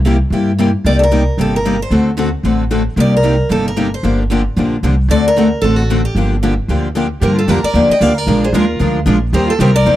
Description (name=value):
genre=acoustic string swing (jazz manouche)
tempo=226 BPM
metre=4/4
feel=swing 58% on 8ths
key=G minor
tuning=A4 = 441 Hz
part: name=picked steel-string acoustic guitar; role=accompaniment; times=0.0-10.0 s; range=C3 to C5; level=-20 LUFS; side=right 6 dB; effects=none
part: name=upright bass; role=bass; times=0.0-10.0 s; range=G1 to G2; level=-16 LUFS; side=equal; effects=none
part: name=picked steel-string acoustic guitar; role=accompaniment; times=0.1-10.0 s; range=C3 to C5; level=-17 LUFS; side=left 4 dB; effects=none
part: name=picked steel-string acoustic guitar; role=melody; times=0.9-10.0 s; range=F#4 to G5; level=-16 LUFS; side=equal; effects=none
part: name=warm violin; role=second line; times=7.2-10.0 s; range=F4 to Eb5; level=-22 LUFS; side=right 4 dB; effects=none
room=small room ambience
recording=dry, close 1970s-style studio recording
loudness=-11 LUFS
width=side -13 dB against mid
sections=0.0-7.2 A section; 7.2-10.0 B section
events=none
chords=0.0 C7; 0.8 Cm7; 1.9 D7; 3.0 Cm7; 4.0 Gm7; 5.1 D7; 6.2 Gm7; 8.3 Bb7; 9.3 Eb6